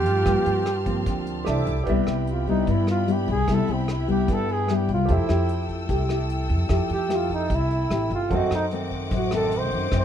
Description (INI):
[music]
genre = bossa nova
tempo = 149 BPM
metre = 4/4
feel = straight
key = C major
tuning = A4 = 440 Hz
[part]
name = mellow flugelhorn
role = melody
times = 0.0-10.0 s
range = C4 to C5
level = -26 LUFS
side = right 2 dB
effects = none
[part]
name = flute section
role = second line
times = 0.0-1.8 s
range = E4 to F4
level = -34 LUFS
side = right 3 dB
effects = none
[part]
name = nylon-string guitar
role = accompaniment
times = 0.0-10.0 s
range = F#2 to G4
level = -26 LUFS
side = left 4 dB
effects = none
[part]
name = warm baby grand piano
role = accompaniment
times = 0.0-10.0 s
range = F#4 to E5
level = -32 LUFS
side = right 4 dB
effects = none
[part]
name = warm symphonic string section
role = sustained chords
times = 0.0-10.0 s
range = B3 to F6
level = -36 LUFS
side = left 3 dB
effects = none
[part]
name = upright bass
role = bass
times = 0.0-10.0 s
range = G1 to G2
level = -26 LUFS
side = equal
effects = none
[part]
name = vintage brush drum kit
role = drums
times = 0.1-10.0 s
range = hi-hat, kick drum, rim click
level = -31 LUFS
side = equal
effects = none
[sound]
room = light reverb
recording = none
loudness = -21 LUFS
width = side -9 dB against mid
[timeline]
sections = 0.0-1.9 A section; 1.9-10.0 B section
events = flugelhorn solo 1.9-10.0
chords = 0.0 Gm11; 1.5 C69; 1.9 Cmaj7; 5.1 Fmaj9; 8.3 D7b9